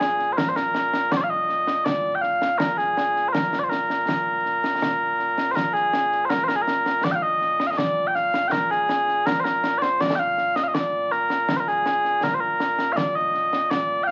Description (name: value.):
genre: scottish traditional, Scottish pipe music.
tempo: 81 BPM.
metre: 2/4.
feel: straight.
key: Bb mixolydian.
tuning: A4 = 440 Hz.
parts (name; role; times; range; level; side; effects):
mellow small bagpipes; melody; 0.0-14.1 s; Bb2 to G5; -23 LUFS; equal; none.
concert snare drum and concert bass drum; drums; 0.0-14.1 s; none; -30 LUFS; equal; none.
room: moderate studio reverb, RT60 0.7 s.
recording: very old 78 rpm record, vinyl crackle, nothing above 7.9 kHz.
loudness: -23 LUFS.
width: mono.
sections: 0.0-5.6 A section; 5.6-14.1 A section.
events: none.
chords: none.